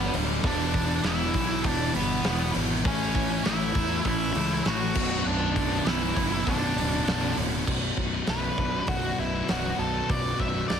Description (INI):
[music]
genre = quiet-loud alternative rock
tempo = 99 BPM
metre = 4/4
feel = straight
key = B minor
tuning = A4 = 440 Hz
[part]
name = octave-fuzz lead guitar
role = melody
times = 0.0-10.8 s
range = B3 to F#5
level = -30 LUFS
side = right 2 dB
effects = distortion, slapback echo
[part]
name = ensemble organ-string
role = sustained chords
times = 0.0-7.7 s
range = E3 to F#5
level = -40 LUFS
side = right 2 dB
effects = none
[part]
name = cranked stack guitar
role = riff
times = 0.0-7.7 s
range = B1 to A3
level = -34 LUFS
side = right 13 dB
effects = overdrive
[part]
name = sludgy distorted guitar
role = riff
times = 0.0-7.4 s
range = B1 to A3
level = -34 LUFS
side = equal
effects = none
[part]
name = thick fuzz guitar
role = riff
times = 0.0-10.8 s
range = B1 to A3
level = -31 LUFS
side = left 10 dB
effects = distortion
[part]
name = fuzz fingered electric bass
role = bass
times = 0.0-10.8 s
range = B0 to E2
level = -31 LUFS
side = equal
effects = overdrive
[part]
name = big rock drum kit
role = drums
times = 0.1-10.8 s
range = crash cymbal, hi-hat, kick drum, snare drum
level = -30 LUFS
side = right 1 dB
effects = none
[part]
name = fingerpicked plugged-in swing-style acoustic guitar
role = arpeggios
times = 7.7-10.8 s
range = B2 to D4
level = -36 LUFS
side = right 6 dB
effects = slapback echo
[sound]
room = light reverb, small room ambience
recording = heavily compressed radio sound, multiband compression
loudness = -24 LUFS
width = side -8 dB against mid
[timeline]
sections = 0.0-7.7 A section; 7.7-10.8 B section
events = lead electric guitar solo 7.7-10.8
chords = 0.4 Em; 2.8 A; 5.0 Bm; 7.7 Bm7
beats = | 0.44 1.04 1.64 2.25 | 2.85 3.45 4.05 4.66 | 5.26 5.87 6.47 7.07 | 7.68 8.28 8.89 9.49 | 10.10 10.70